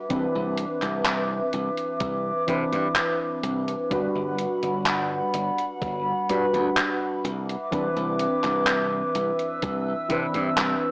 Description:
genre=vaporwave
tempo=63 BPM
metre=4/4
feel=straight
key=unclear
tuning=A4 = 441 Hz
part: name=warbly tape-like pad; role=sustained chords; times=0.0-10.9 s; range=G3 to E6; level=-28 LUFS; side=equal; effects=chorus, built-in reverb
part: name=warbly lo-fi synth keys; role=accompaniment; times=0.1-10.9 s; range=E3 to B4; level=-27 LUFS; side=equal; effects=wide subtle chorus, tape echo
part: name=slap bass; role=bass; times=0.1-10.7 s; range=G1 to C3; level=-30 LUFS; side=equal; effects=none
part: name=electronic kick drum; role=drums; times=0.1-10.3 s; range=none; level=-33 LUFS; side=equal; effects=none
part: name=gated 80s digital drum machine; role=drums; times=0.1-10.8 s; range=handclaps, hi-hat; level=-26 LUFS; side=equal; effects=gated reverb
room=moderate plate reverb, RT60 2.6 s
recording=worn, warbling old tape, cassette tape, warbly pitch drift, small speaker sound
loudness=-22 LUFS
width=side -27 dB against mid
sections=0.0-10.9 A section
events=none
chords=0.0 Cmaj9; 3.9 Gmaj7; 7.2 Cmaj9

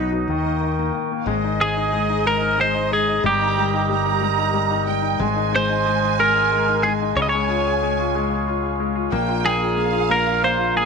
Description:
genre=six-eight pop ballad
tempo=61 BPM (dotted quarters)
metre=6/8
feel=straight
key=Ab major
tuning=A4 = 443 Hz
part: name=twelve-string electric guitar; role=melody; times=0.0-10.9 s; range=D#4 to Eb5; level=-21 LUFS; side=equal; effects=none
part: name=rich studio violin section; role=second line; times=0.0-10.9 s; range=B4 to Bb5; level=-27 LUFS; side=right 14 dB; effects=slapback echo
part: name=bright concert grand piano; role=accompaniment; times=0.0-10.9 s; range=B2 to Ab4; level=-24 LUFS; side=left 14 dB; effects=none
part: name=warm woodwind section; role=sustained chords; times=0.0-10.9 s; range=F#4 to Eb6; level=-27 LUFS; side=right 14 dB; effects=none
part: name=fretless electric bass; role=bass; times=0.0-10.9 s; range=G1 to D#2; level=-26 LUFS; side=right 1 dB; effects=wide subtle chorus
room=light reverb, studio reverb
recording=1960s-style stereo with parts hard left and right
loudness=-18 LUFS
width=side -5 dB against mid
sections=0.0-1.3 A section; 1.3-10.9 A section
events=none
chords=0.3 D#7; 1.3 Ab; 3.2 Eb/G; 5.2 Ab7; 7.2 Db; 9.1 Bb7

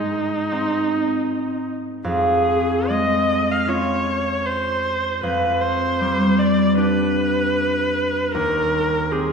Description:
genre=classical, romantic duo for viola and harp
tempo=77 BPM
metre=4/4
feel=rubato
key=unclear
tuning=A4 = 440 Hz
part: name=rich viola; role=melody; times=0.0-9.3 s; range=Eb4 to F5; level=-22 LUFS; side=equal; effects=none
part: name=concert harp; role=accompaniment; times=0.0-9.3 s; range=Eb2 to G4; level=-20 LUFS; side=right 1 dB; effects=none
room=wet scoring stage reverb, RT60 1.8 s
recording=heard from further back in the room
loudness=-18 LUFS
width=side -5 dB against mid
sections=0.0-9.3 A section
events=none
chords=0.0 Ab; 2.1 Db/F; 5.2 G7/F; 8.4 Cm/Eb

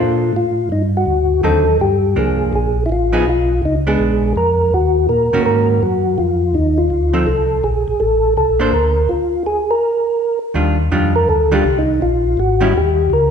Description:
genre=jazz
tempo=164 BPM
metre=4/4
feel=swing 65% on 8ths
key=Bb major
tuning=A4 = 440 Hz
part: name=percussive tonewheel organ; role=melody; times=0.0-13.3 s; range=Eb4 to Bb4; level=-16 LUFS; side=left 1 dB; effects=slow rotary speaker, chorus vibrato
part: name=hollow-body jazz guitar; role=accompaniment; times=0.0-12.7 s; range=D3 to C5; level=-20 LUFS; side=right 2 dB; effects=none
part: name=mellow tonewheel organ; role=bass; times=0.0-13.3 s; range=Ab1 to Bb2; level=-18 LUFS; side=equal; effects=chorus vibrato, slow rotary speaker
room=moderate recital hall reverb, RT60 1.7 s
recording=recorded in a church or concert hall, nothing above 10.3 kHz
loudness=-13 LUFS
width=side -7 dB against mid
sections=0.0-10.6 A section; 10.6-13.3 B section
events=stop 9.1-10.6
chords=0.3 Fadd9; 1.1 D7b9; 1.8 Gm7; 3.3 Fdim; 4.0 Bb7b9; 4.7 Ebm7; 6.2 F7; 7.6 Bbmaj9; 9.1 N.C.; 10.6 Ebmaj9; 12.0 Bbm7; 12.7 Eb7

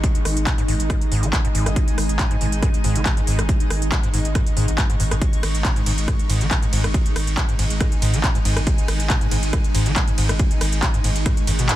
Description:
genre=driving peak-time techno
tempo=139 BPM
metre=4/4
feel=straight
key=unclear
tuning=A4 = 440 Hz
part: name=overdriven acid bass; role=riff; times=0.0-11.8 s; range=G#1 to D#3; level=-26 LUFS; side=equal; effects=analog chorus, sidechain pumping
part: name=saturated sub bass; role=bass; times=0.0-11.7 s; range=G#1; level=-22 LUFS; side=equal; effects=sidechain pumping, low-pass filter
part: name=electronic kick drum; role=drums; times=0.0-11.3 s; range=none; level=-20 LUFS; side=equal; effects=overdrive, small room ambience
part: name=techno drum kit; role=drums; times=0.0-11.8 s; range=handclaps, hi-hat, ride cymbal, rim click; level=-25 LUFS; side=equal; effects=overdrive, sidechain pumping on hats, small room ambience, sidechain pumping on cymbals
part: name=granular cloud pad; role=texture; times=0.0-11.8 s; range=G#3 to C#6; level=-28 LUFS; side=equal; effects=built-in reverb, sidechain pumping
room=little or no reverb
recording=dense, heavily limited modern master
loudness=-17 LUFS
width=side -14 dB against mid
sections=0.0-11.8 A section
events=none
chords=0.0 G#5

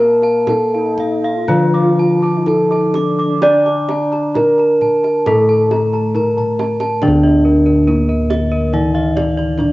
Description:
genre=Javanese gamelan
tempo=58-70 BPM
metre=4/4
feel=straight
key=D pelog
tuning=A4 = 441 Hz
part: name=gamelan-type bronze metallophone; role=melody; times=0.0-9.7 s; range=Bb3 to D5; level=-14 LUFS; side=equal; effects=cassette tape
part: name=gamelan-type bronze metallophone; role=accompaniment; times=0.0-9.7 s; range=D3 to D4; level=-21 LUFS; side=left 2 dB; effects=cassette tape
part: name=gamelan-type bossed gongs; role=arpeggios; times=0.0-9.7 s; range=Bb4 to D6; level=-27 LUFS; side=left 2 dB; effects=cassette tape
part: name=gamelan-type bronze metallophone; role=arpeggios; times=0.0-9.7 s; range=Bb4 to D6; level=-24 LUFS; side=right 2 dB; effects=cassette tape
part: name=gamelan-type bossed gongs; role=bass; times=0.0-9.7 s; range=D2 to D5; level=-20 LUFS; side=equal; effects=none
part: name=kendang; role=percussion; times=0.2-9.7 s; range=none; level=-27 LUFS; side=right 4 dB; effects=none
part: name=warm velvety synth lead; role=second line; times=0.8-4.6 s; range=D4 to F4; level=-23 LUFS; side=right 1 dB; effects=chorus, cassette tape
room=light reverb, small room ambience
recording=home recording on cassette, nothing above 7.7 kHz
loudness=-12 LUFS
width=side -18 dB against mid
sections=0.0-7.0 A section; 7.0-9.7 B section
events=drum fill 6.2-7.0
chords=none

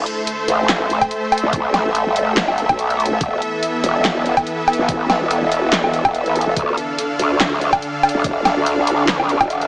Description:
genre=heavy wobble dubstep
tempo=143 BPM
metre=4/4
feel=swing 54% on 16ths, half-time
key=A minor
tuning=A4 = 435 Hz
part: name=supersaw pad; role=sustained chords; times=0.0-9.7 s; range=D3 to F5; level=-20 LUFS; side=equal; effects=sidechain pumping
part: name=growl bass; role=bass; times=0.0-9.7 s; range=E1 to D2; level=-18 LUFS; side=equal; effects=chorus, overdrive
part: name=dubstep drum kit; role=drums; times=0.1-9.7 s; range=handclaps, hi-hat, snare drum, woodblock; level=-18 LUFS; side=equal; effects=none
part: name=electronic kick drum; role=drums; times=1.0-9.5 s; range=none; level=-26 LUFS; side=equal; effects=none
room=light reverb, digital ambience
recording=small speaker sound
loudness=-15 LUFS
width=side -27 dB against mid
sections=0.0-9.7 A section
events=none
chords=0.0 Am; 3.2 Esus4; 6.6 Dm

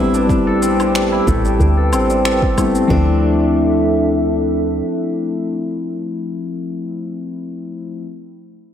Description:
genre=organic downtempo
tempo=92 BPM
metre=4/4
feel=swing 53% on 16ths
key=D dorian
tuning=A4 = 440 Hz
part: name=muted felt-like synth keys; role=accompaniment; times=0.0-8.0 s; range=F3 to B4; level=-19 LUFS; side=left 3 dB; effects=chorus, sidechain pumping, analog delay
part: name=warbly tape-like pad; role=sustained chords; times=0.0-6.3 s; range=D4 to A5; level=-21 LUFS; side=right 1 dB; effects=chorus, built-in reverb, sidechain pumping
part: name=steel-string zither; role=arpeggios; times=0.0-5.9 s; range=A3 to A4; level=-21 LUFS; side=equal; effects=low-pass filter, analog delay
part: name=woody FM bass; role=bass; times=0.0-4.8 s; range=A1 to D2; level=-20 LUFS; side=right 1 dB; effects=sidechain pumping
part: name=wind-like tuned noise texture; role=texture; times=1.5-2.9 s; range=none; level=barely audible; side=none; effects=none
part: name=electronic shaker, woodblock and finger snaps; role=drums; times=0.1-2.9 s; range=none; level=-26 LUFS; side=left 1 dB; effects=overdrive, small room ambience
part: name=electronic kick drum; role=drums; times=0.3-3.0 s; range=none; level=-20 LUFS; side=right 1 dB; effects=overdrive, small room ambience
part: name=frame drum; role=percussion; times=1.3-1.4 s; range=none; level=-26 LUFS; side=left 1 dB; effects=none
room=wet lush hall reverb, RT60 2.2 s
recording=dreamy mix soaked in reverb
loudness=-14 LUFS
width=side -9 dB against mid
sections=0.0-2.9 A section; 2.9-5.5 B section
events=filter sweep on FM bass 0.0-2.9; filter sweep on guzheng 0.0-2.9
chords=0.0 Am9; 2.9 Dm7

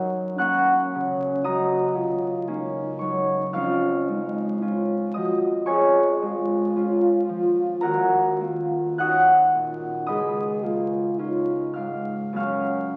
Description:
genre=classical, romantic duo for French horn and harp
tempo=49-59 BPM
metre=4/4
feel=rubato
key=F# major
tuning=A4 = 440 Hz
part: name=mellow French horn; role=melody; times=0.0-13.0 s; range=C#4 to G#4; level=-29 LUFS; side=equal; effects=none
part: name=concert harp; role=accompaniment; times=0.0-13.0 s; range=C#2 to F#6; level=-24 LUFS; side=equal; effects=none
room=wet scoring stage reverb, RT60 1.6 s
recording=very old 78 rpm record, vinyl crackle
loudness=-23 LUFS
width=mono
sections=0.0-13.0 A section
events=none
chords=0.0 F#; 3.6 C#/E#; 7.8 D#m7; 10.1 C#13; 12.4 F#

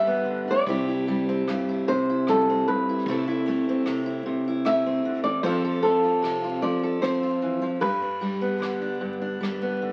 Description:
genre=acoustic folk-pop ballad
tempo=76 BPM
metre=3/4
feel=straight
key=C major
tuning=A4 = 441 Hz
part: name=flamenco guitar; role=melody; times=0.0-9.8 s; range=A4 to E5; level=-27 LUFS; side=equal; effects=none
part: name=fingerpicked steel-string acoustic guitar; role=accompaniment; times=0.0-9.9 s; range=G2 to A4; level=-27 LUFS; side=equal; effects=none
part: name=woody fretless electric bass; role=bass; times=0.7-9.4 s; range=C2 to G2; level=-39 LUFS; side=equal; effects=none
part: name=soft brush drum kit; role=drums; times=0.7-9.6 s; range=kick drum, ride cymbal, rim click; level=-43 LUFS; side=equal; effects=none
room=moderate studio reverb, RT60 0.7 s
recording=very old 78 rpm record, vinyl crackle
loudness=-25 LUFS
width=mono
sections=0.0-9.9 A section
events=none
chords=0.0 G; 0.7 C; 3.1 Am/C; 5.4 F; 7.8 G

